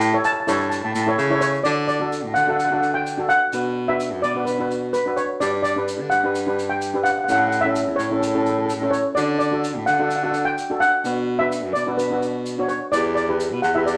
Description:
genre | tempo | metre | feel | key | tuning
calypso | 128 BPM | 4/4 | swing 53% on 16ths | D major | A4 = 441 Hz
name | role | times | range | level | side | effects
steel pan | melody | 0.0-14.0 s | A4 to A5 | -24 LUFS | equal | none
clear baritone saxophone | bass | 0.0-14.0 s | E2 to D3 | -27 LUFS | equal | none
tube shaker | percussion | 0.0-14.0 s | none | -41 LUFS | equal | none
steel pan | accompaniment | 0.1-13.9 s | C#4 to C#5 | -27 LUFS | equal | none
room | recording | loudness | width
wet studio reverb, RT60 0.8 s | none | -21 LUFS | mono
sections
0.0-1.6 A section; 1.6-14.0 B section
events
none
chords
0.0 A7; 1.6 D; 3.5 Bm; 5.4 G; 7.3 A; 9.2 D; 11.0 Bm; 12.9 Em7

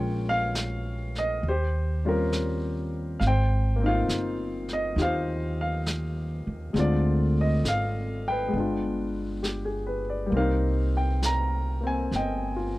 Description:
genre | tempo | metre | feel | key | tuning
jazz ballad | 68 BPM | 4/4 | swing 68% on 8ths | unclear | A4 = 441 Hz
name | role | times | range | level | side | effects
warm baby grand piano | accompaniment | 0.0-12.8 s | D3 to Bb5 | -28 LUFS | left 1 dB | none
upright bass | bass | 0.0-12.8 s | G1 to Eb2 | -27 LUFS | equal | none
vintage brush drum kit | drums | 0.6-12.8 s | brushed snare drum, hi-hat, snare drum | -33 LUFS | equal | none
room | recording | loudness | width
little or no reverb | dry, close 1970s-style studio recording | -24 LUFS | side -18 dB against mid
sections
0.0-12.8 A section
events
none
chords
0.0 Bbm7; 1.4 Eb13; 3.2 Ab6; 6.7 Dm7b5; 8.5 G7b9; 10.3 Cm7

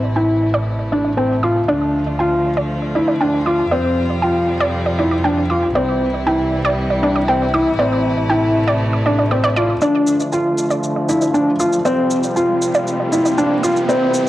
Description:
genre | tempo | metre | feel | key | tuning
piano and strings electronica | 118 BPM | 4/4 | straight | D minor | A4 = 436 Hz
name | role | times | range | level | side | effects
warm string quartet | sustained chords | 0.0-14.3 s | C3 to F4 | -23 LUFS | equal | low-pass filter, cassette tape
dark studio double bass section | bass | 0.0-14.3 s | A1 to Bb2 | -23 LUFS | equal | transformer saturation, high-pass filter
wide unison pluck | arpeggios | 0.2-13.9 s | D5 to D6 | -22 LUFS | right 2 dB | cassette tape, tape echo
felt-muted upright piano | riff | 0.2-14.2 s | C4 to F4 | -17 LUFS | left 1 dB | low-pass filter, cassette tape, tape echo
shaker | drums | 9.8-14.2 s | none | -29 LUFS | equal | overdrive, studio reverb, cassette tape
riser | sound effects | 11.5-14.3 s | none | -30 LUFS | right 2 dB | none
room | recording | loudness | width
moderate spring reverb, RT60 1.9 s, studio ambience | home recording on cassette | -14 LUFS | side -15 dB against mid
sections
0.0-9.8 A section; 9.8-14.3 B section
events
filter sweep on synth arpeggio sound 0.0-9.8, 9.8-14.3; build-up 9.8-14.3; filter sweep on string quartet 9.8-14.3; riser 11.5-14.3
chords
0.0 Am; 1.7 Dm; 3.7 Fsus2; 5.8 C; 7.8 Am; 9.8 Dm; 11.9 Fsus2

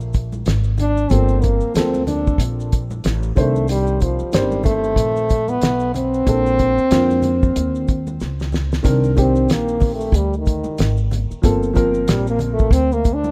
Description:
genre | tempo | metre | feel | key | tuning
hip hop, jazz-hop | 93 BPM | 4/4 | swing 59% on 16ths | C dorian | A4 = 440 Hz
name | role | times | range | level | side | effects
upright bass | bass | 0.0-13.3 s | G1 to F2 | -23 LUFS | equal | none
maracas and congas | percussion | 0.0-13.3 s | none | -35 LUFS | equal | none
cloth-damped thuddy drum kit | drums | 0.1-13.2 s | hi-hat, kick drum, snare drum | -21 LUFS | equal | none
mellow French horn | melody | 0.8-13.3 s | Eb3 to D4 | -22 LUFS | equal | tape echo
dark upright piano | accompaniment | 1.1-12.7 s | D3 to C5 | -24 LUFS | equal | none
room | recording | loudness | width
studio ambience | rough home demo mix | -18 LUFS | mono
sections
0.0-8.8 A section; 8.8-13.3 B section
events
break 0.0-1.1; drum fill 8.2-8.8; French horn solo 8.8-13.3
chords
0.0 N.C.; 1.1 Gm11; 3.4 Cm9; 6.3 Bbmaj9; 8.8 Cm9; 11.4 Gm11

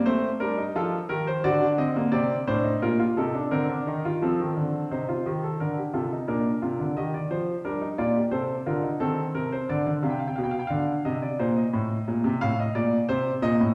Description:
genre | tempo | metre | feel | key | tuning
classical, baroque-style 3-part fugue for grand piano | 88 BPM | 4/4 | straight | unclear | A4 = 440 Hz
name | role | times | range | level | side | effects
clear concert grand piano | solo | 0.0-13.7 s | A2 to G5 | -26 LUFS | equal | none
room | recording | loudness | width
wet recital hall reverb, RT60 1.5 s | heard from further back in the room | -26 LUFS | mono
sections
0.0-4.2 A section; 4.2-13.7 B section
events
none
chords
0.1 Adim; 1.4 D7(no3); 2.8 Bbmaj9; 4.2 F; 5.6 Bb; 7.0 Eb; 8.3 Adim/C; 9.7 G7; 11.1 Cm; 12.4 F7/A

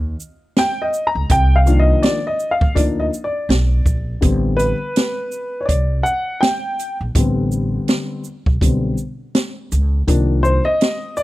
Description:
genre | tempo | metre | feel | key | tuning
hip hop, jazz-hop | 82 BPM | 4/4 | swing 58% on 16ths | unclear | A4 = 441 Hz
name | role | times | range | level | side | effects
upright bass | bass | 0.0-10.6 s | A1 to Eb2 | -18 LUFS | equal | none
open jazz drum kit | drums | 0.2-11.2 s | hi-hat, kick drum, shaker, snare drum | -19 LUFS | equal | none
dark baby grand piano | accompaniment | 0.6-11.2 s | D3 to Bb5 | -19 LUFS | left 1 dB | none
room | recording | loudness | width
small room ambience | dry, close 1970s-style studio recording | -15 LUFS | side -17 dB against mid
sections
0.0-4.2 A section; 4.2-11.2 B section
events
grand piano solo 0.0-4.2, 4.2-11.2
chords
0.0 Cm11; 4.2 Am11; 10.1 Cm11

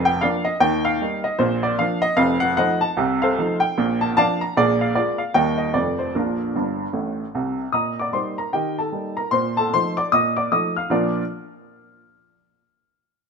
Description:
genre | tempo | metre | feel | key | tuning
jazz, stride piano | 151 BPM | 4/4 | swing 60% on 8ths | Bb major | A4 = 440 Hz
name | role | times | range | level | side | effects
warm upright piano | solo | 0.0-11.2 s | F1 to F6 | -19 LUFS | equal | none
room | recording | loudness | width
moderate echo chamber reverb, RT60 1.7 s | minimal, uncompressed stereo recording | -19 LUFS | side -5 dB against mid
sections
0.0-7.7 A section; 7.7-10.9 B section; 10.9-12.5 C section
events
upright piano fill 6.5-7.7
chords
0.0 Bb/F; 0.6 Eb; 1.4 Bb; 2.2 F7; 3.0 F7/C; 3.8 Bb; 4.6 Bb5; 5.4 Eb; 5.8 F; 6.1 Bb; 7.7 Eb/Bb; 9.3 F7/Bb; 10.9 Bb

